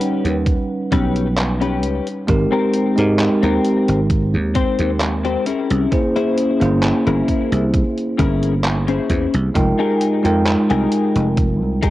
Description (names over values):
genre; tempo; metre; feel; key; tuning
vaporwave; 66 BPM; 4/4; straight; unclear; A4 = 438 Hz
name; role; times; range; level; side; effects
bell-like tine electric piano; accompaniment; 0.0-11.9 s; G3 to G5; -19 LUFS; right 1 dB; wide subtle chorus, tape echo
clean electric guitar; riff; 0.0-11.9 s; C4 to C5; -22 LUFS; left 5 dB; analog chorus, tape echo
detuned 8-bit digital drum machine; drums; 0.0-11.9 s; handclaps, hi-hat; -26 LUFS; right 1 dB; overdrive, cassette tape
dry thumbed slap bass; bass; 0.2-11.9 s; F1 to Ab2; -19 LUFS; right 1 dB; none
electronic kick drum; drums; 0.5-11.9 s; none; -19 LUFS; right 1 dB; overdrive, cassette tape
room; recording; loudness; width
moderate spring reverb, RT60 2.6 s; home recording on cassette; -15 LUFS; side -16 dB against mid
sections
0.0-11.9 A section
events
none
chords
0.0 Eb7alt; 2.3 Abmaj9; 5.5 C7b9b13; 9.6 Fm11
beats
0.47 1.37 | 2.28 3.19 4.10 5.01 | 5.92 6.83 7.74 8.65 | 9.56 10.46 11.37